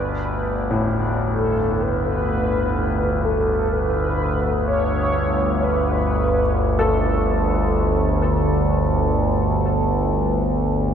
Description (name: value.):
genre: dark ambient drone.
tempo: free time.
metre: none.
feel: none.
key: unclear.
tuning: A4 = 440 Hz.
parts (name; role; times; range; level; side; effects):
mellow horn-like synth lead; melody; 0.0-7.1 s; A4 to C#5; -25 LUFS; equal; ensemble chorus, ping-pong delay.
overtone-sweeping drone; drone; 0.0-10.9 s; G1 to D2; -19 LUFS; equal; chorus, built-in reverb.
warm baby grand piano; arpeggios; 0.7-10.9 s; A2 to A4; -27 LUFS; left 1 dB; ping-pong delay.
room: wet huge ambient reverb, RT60 7.3 s.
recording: dark, warm production.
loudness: -18 LUFS.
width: side -8 dB against mid.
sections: 0.0-10.9 A section.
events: fade-in on synth drone 0.0-10.9; fade-in on grand piano 0.0-10.9.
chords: 0.0 Gadd9.